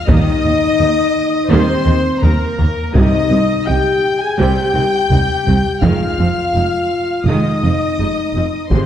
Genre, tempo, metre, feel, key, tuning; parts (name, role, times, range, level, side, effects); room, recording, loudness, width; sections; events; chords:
cinematic, epic orchestral film score; 84 BPM; 4/4; straight; A4 = 440 Hz
rich studio violin section; melody; 0.0-8.9 s; Bb5 to Ab6; -27 LUFS; left 4 dB
warm symphonic violin section; second line; 0.0-8.9 s; Bb4 to Ab5; -24 LUFS; left 3 dB
rich symphonic viola section; accompaniment; 0.1-8.9 s; C3 to Eb4; -22 LUFS; right 1 dB
mellow French horn section; sustained chords; 0.1-8.9 s; Bb3 to Ab4; -19 LUFS; left 4 dB
bright trumpet section; stabs; 0.1-8.9 s; Bb4 to Ab5; -22 LUFS; left 1 dB
clear symphonic cello section; bass; 0.1-8.8 s; C2 to Ab2; -20 LUFS; right 2 dB
clear symphonic double bass section; bass; 0.1-8.8 s; F1 to Eb2; -20 LUFS; right 2 dB
taiko ensemble; drums; 0.1-8.9 s; -18 LUFS; equal
timpani; percussion; 3.0-4.0 s; C3; -24 LUFS; left 1 dB
wet concert hall reverb, RT60 1.9 s; dark, warm production; -12 LUFS; side -10 dB against mid
0.0-8.9 A section
0.1 Eb; 2.9 Cm; 5.8 Fm7